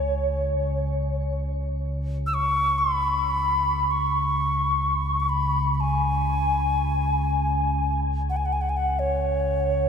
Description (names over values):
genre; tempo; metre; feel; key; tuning
world meditative, free-time meditation music; free time; none; none; unclear; A4 = 442 Hz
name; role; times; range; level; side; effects
bright alto ocarina; melody; 0.0-9.9 s; C#5 to E6; -24 LUFS; left 1 dB; shimmer reverb, ping-pong delay
deep rumbling drone; drone; 0.0-9.9 s; C#2 to C#3; -26 LUFS; equal; built-in reverb, phaser, wide subtle chorus
room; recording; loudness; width
wet cathedral reverb, RT60 6.2 s; in a vast, echoing space; -22 LUFS; side -6 dB against mid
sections
0.0-1.4 A section; 1.4-9.9 A section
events
none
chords
none